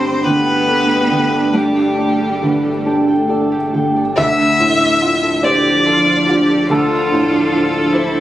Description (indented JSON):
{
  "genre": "neoclassical piano and strings",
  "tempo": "45-49 BPM (dotted quarters)",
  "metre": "6/8",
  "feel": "rubato",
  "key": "D minor",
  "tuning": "A4 = 439 Hz",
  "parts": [
    { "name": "clear violin", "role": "melody", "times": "0.0-8.2 s", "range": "G4 to E5", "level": "-17 LUFS", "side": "left 2 dB", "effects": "none" },
    { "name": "rich cello", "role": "second line", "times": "0.0-8.2 s", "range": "G3 to G4", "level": "-22 LUFS", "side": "right 3 dB", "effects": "none" },
    { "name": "felt-muted upright piano", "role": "accompaniment", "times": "0.0-8.2 s", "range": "D2 to E5", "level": "-18 LUFS", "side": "equal", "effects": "none" },
    { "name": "ethereal airy pad", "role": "sustained chords", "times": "0.2-8.2 s", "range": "F3 to C5", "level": "-20 LUFS", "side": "right 3 dB", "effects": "ensemble chorus, built-in reverb" },
    { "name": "concert harp", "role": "arpeggios", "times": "0.0-8.2 s", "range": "C4 to B5", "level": "-20 LUFS", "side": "left 1 dB", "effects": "tape echo" },
    { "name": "pure sine sub bass", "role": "bass", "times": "0.0-8.2 s", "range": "G1 to D2", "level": "-31 LUFS", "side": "equal", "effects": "none" }
  ],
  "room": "moderate studio reverb, RT60 0.6 s",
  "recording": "recorded on a phone in the room, studio reverb",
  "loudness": "-12 LUFS",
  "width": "side -13 dB against mid",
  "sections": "0.0-4.2 A section; 4.2-8.2 B section",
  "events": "none",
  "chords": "0.0 Gadd9; 4.2 Dm7"
}